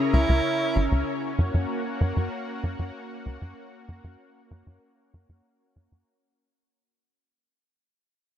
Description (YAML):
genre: synthwave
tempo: 96 BPM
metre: 4/4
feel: straight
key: unclear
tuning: A4 = 440 Hz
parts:
  - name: analog string pad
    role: sustained chords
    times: 0.0-6.0 s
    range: C#3 to A#4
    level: -29 LUFS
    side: left 1 dB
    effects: ensemble chorus
  - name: clear tenor saxophone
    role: melody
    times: 0.1-0.9 s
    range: E4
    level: -28 LUFS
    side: right 2 dB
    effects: digital delay
  - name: tight sequencer bass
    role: bass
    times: 0.1-6.0 s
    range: G#1 to F#2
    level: -24 LUFS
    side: equal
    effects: none
room: light reverb, studio reverb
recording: none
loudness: -23 LUFS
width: side -10 dB against mid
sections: 0.0-6.1 A section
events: fade-out 0.0-6.1; filter sweep on analog synth bass 0.0-6.1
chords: 0.0 C#m; 1.1 F#